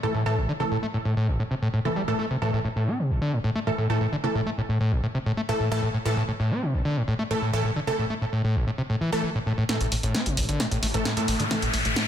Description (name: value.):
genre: driving peak-time techno.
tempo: 132 BPM.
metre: 4/4.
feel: straight.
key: A minor.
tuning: A4 = 440 Hz.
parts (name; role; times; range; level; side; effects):
screaming distorted acid line; riff; 0.0-12.1 s; A1 to C4; -25 LUFS; equal; distortion, chorus.
rave stab; stabs; 0.0-11.7 s; E3 to A4; -29 LUFS; right 1 dB; chorus, built-in reverb, dub echo.
swarming drone; drone; 10.8-12.1 s; A2; -35 LUFS; right 1 dB; built-in reverb.
punchy analog drum machine; drums; 9.7-12.1 s; hi-hat, snare drum; -27 LUFS; equal; none.
riser; sound effects; 10.3-12.1 s; none; -31 LUFS; left 3 dB; none.
tight sequencer bass; bass; 9.8-11.9 s; A1 to A2; -29 LUFS; equal; none.
room: moderate stone room reverb, RT60 1.2 s.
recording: dense, heavily limited modern master.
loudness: -23 LUFS.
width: side -10 dB against mid.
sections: 0.0-9.7 A section; 9.7-12.1 B section.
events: build-up 9.7-12.1; drum fill 9.7-12.1; riser 10.3-12.1.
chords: 0.0 A5.